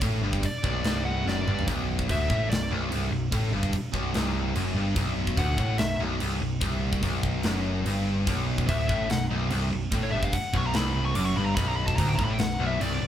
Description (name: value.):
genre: heavy metal.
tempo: 145 BPM.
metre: 4/4.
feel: straight.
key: unclear.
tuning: A4 = 440 Hz.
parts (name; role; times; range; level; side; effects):
high-gain distorted guitar; riff; 0.0-13.1 s; B1 to A2; -32 LUFS; left 6 dB; distortion.
high-gain distorted guitar; riff; 0.0-13.1 s; B1 to A2; -32 LUFS; right 5 dB; distortion.
overdriven picked electric bass; bass; 0.0-13.1 s; B0 to A1; -30 LUFS; equal; none.
tight metal drum kit; drums; 0.0-12.9 s; crash cymbal, kick drum, snare drum, toms; -30 LUFS; equal; none.
smooth overdriven lead guitar; melody; 0.5-2.7, 5.4-6.0, 8.7-13.1 s; C#5 to D6; -31 LUFS; left 1 dB; none.
crunchy overdriven guitar; riff; 8.3-13.1 s; B1 to A2; -32 LUFS; left 1 dB; none.
room: moderate large studio reverb, RT60 1.4 s.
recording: band playing live in one room.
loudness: -24 LUFS.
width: side -10 dB against mid.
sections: 0.0-13.1 A section.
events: lead electric guitar solo 0.0-13.1; drum fill 1.3-1.7.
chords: 0.0 Bm.